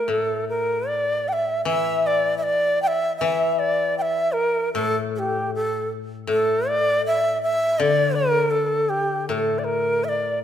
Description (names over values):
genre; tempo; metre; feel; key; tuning
japanese traditional, Japanese chamber music; 78 BPM; 4/4; rubato; A in sen; A4 = 439 Hz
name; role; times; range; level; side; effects
breathy bright long shakuhachi; melody; 0.0-10.4 s; G4 to G5; -21 LUFS; right 1 dB; none
koto; accompaniment; 0.1-10.4 s; A2 to E3; -27 LUFS; left 6 dB; none
room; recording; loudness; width
light reverb; minimal, uncompressed stereo recording; -20 LUFS; side -9 dB against mid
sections
0.1-10.4 A section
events
none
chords
none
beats
| 0.11 0.90 1.69 2.47 | 3.24 4.01 4.78 5.54 | 6.29 7.04 7.80 8.55 | 9.30 10.07